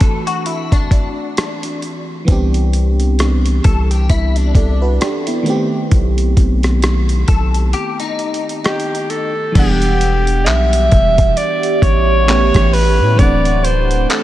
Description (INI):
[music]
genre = contemporary R&B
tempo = 66 BPM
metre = 4/4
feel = swing 58% on 16ths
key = E minor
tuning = A4 = 439 Hz
[part]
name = FM electric piano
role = accompaniment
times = 0.0-14.2 s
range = D#3 to F#5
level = -21 LUFS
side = right 2 dB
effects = chorus
[part]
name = clean electric guitar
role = arpeggios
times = 0.0-9.3 s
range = D4 to A4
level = -24 LUFS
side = left 6 dB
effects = ensemble chorus, analog delay
[part]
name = dusty soul sampler-style drum kit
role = drums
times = 0.0-14.2 s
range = crash cymbal, handclaps, hi-hat, kick drum, rim click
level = -16 LUFS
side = equal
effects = none
[part]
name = long sustained 808-style bass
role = bass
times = 2.3-14.1 s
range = D1 to A2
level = -14 LUFS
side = equal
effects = none
[part]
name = breathy alto saxophone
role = melody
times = 8.6-14.2 s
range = G4 to E5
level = -16 LUFS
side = equal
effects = analog delay
[part]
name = deep dark ambient pad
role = sustained chords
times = 10.8-14.2 s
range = G4 to D6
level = -22 LUFS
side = right 4 dB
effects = chorus, built-in reverb, sidechain pumping
[sound]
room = light reverb, digital ambience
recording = none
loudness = -12 LUFS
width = side -14 dB against mid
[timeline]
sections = 0.0-9.6 A section; 9.6-14.2 B section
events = break 7.7-9.6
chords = 0.0 D9; 2.3 Cmaj9; 5.5 B7b9b13; 9.6 Em9; 12.3 A9; 13.2 D9